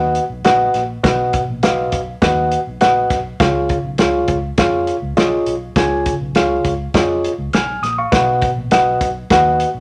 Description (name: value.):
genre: uptempo 1960s-style soul.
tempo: 102 BPM.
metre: 4/4.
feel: straight.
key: unclear.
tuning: A4 = 440 Hz.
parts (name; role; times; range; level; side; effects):
reed electric piano; accompaniment; 0.0-9.7 s; B2 to E#6; -18 LUFS; equal; none.
vintage muted fingered electric bass; bass; 0.0-9.8 s; A#1 to E#2; -29 LUFS; equal; none.
warm soul drum kit; drums; 0.1-9.7 s; hi-hat, kick drum, snare drum; -20 LUFS; equal; none.
room: wet studio reverb, RT60 0.7 s.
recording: none.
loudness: -16 LUFS.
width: mono.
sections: 0.0-9.8 A section.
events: none.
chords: 0.0 B; 3.4 C#; 8.1 B.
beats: 0.45 | 1.04 1.63 2.22 2.81 | 3.40 3.99 4.58 5.17 | 5.76 6.35 6.94 7.53 | 8.12 8.71 9.30.